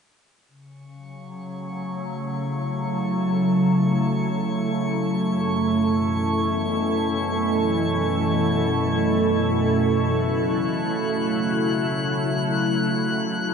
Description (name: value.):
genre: ambient.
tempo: free time.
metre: none.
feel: none.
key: F# minor.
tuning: A4 = 440 Hz.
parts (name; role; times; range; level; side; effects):
glassy FM pad; sustained chords; 1.3-13.5 s; F#2 to A4; -21 LUFS; equal; ensemble chorus, built-in reverb.
analog drone; drone; 4.9-13.5 s; F#3 to C#4; -33 LUFS; left 1 dB; chorus.
drifting glass-harmonics texture; texture; 1.7-13.5 s; C#6 to F#6; -31 LUFS; left 1 dB; chorus, built-in reverb.
room: wet huge ambient reverb, RT60 8.2 s.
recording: nothing above 10.5 kHz.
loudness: -20 LUFS.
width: side -6 dB against mid.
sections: 0.5-13.5 A section.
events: fade-in on synth drone 0.5-13.5; fade-in on synth texture 0.5-13.5.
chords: 0.5 F#m7; 5.3 Esus4/F#; 10.1 F#m7.